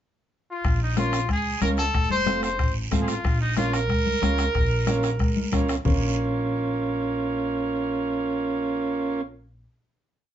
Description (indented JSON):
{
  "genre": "latin, cumbia",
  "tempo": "184 BPM",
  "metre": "4/4",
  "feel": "straight",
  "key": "Bb harmonic minor",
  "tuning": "A4 = 440 Hz",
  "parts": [
    { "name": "bright trumpet", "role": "melody", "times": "0.5-5.5 s", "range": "Eb4 to C5", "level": "-26 LUFS", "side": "equal", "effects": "none" },
    { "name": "upright bass", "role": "bass", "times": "0.6-9.6 s", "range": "F1 to Db2", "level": "-28 LUFS", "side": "equal", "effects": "none" },
    { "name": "bombo", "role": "percussion", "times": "0.6-5.9 s", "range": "none", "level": "-27 LUFS", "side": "left 1 dB", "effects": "none" },
    { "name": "congas", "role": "percussion", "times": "0.6-5.9 s", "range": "none", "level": "-29 LUFS", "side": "left 4 dB", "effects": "none" },
    { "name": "guiro", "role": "percussion", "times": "0.6-5.9 s", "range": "none", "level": "-38 LUFS", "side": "right 6 dB", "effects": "none" },
    { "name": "overdriven combo organ", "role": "accompaniment", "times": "1.0-9.2 s", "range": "A3 to F4", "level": "-26 LUFS", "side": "right 3 dB", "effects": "none" }
  ],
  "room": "moderate small room ambience, RT60 0.5 s",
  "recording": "band playing live in one room, nothing above 7.6 kHz",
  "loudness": "-22 LUFS",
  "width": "side -10 dB against mid",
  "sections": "0.0-0.6 pickup bar; 0.6-5.9 A section; 5.9-8.5 final chord",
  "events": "none",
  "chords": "0.0 N.C.; 0.6 Bbm; 1.9 F; 3.2 Bbm",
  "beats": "0.32 | 0.64 0.97 1.29 1.62 | 1.94 2.27 2.59 2.92 | 3.25 3.57 3.90 4.22 | 4.55 4.88 5.20 5.53 | 5.85 6.18 6.50 6.83 | 7.15 7.48 7.80 8.13"
}